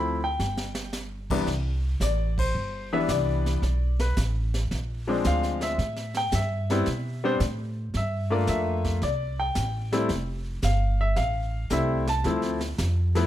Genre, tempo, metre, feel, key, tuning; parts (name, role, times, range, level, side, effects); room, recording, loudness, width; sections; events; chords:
jazz piano trio; 111 BPM; 4/4; swing 69% on 8ths; C major; A4 = 440 Hz
bright concert grand piano; melody; 0.0-13.3 s; C2 to B5; -27 LUFS; left 2 dB
upright bass; bass; 0.0-13.3 s; F1 to B2; -27 LUFS; equal
jazz brush drum kit; drums; 0.4-13.3 s; brushed snare drum, crash cymbal, hi-hat, kick drum, snare drum; -35 LUFS; right 2 dB
light reverb; -24 LUFS; side -12 dB against mid
0.0-1.5 A section; 1.5-13.3 A section
drum fill 0.4-0.9; band accent 2.3
0.4 N.C.; 1.5 Cmaj9; 3.6 Asus2; 4.7 Bb9; 5.8 A7(no3); 7.9 Gm9; 9.0 C5; 10.1 Fmaj7; 12.2 Dm9